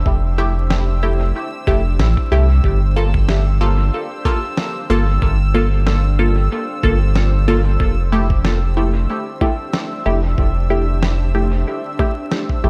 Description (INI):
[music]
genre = ambient dub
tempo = 93 BPM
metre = 4/4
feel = swing 55% on 16ths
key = unclear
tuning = A4 = 440 Hz
[part]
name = granular cloud pad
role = sustained chords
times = 0.0-12.7 s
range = D4 to F5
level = -33 LUFS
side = equal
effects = built-in reverb
[part]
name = warm sub bass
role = bass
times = 0.0-12.7 s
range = F1 to C2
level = -18 LUFS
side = equal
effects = tube saturation
[part]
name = bubbling stepped-filter texture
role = texture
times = 0.0-12.7 s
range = E6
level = -32 LUFS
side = equal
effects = chorus, built-in reverb
[part]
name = electronic kick drum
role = drums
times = 0.1-12.6 s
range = none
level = -21 LUFS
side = equal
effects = studio reverb
[part]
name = filtered dub chord stab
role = stabs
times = 0.4-12.7 s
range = A3 to A4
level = -24 LUFS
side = equal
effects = phaser, dub echo
[part]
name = electronic snare drum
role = drums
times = 0.7-12.5 s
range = none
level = -27 LUFS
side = equal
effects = studio reverb, dub echo
[sound]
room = light reverb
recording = echo-heavy mix, vinyl crackle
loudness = -17 LUFS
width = mono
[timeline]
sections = 0.0-12.7 A section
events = fade-in on ambient pad 0.0-12.7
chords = 0.0 Fmaj7; 2.6 Gm7; 7.8 Fmaj7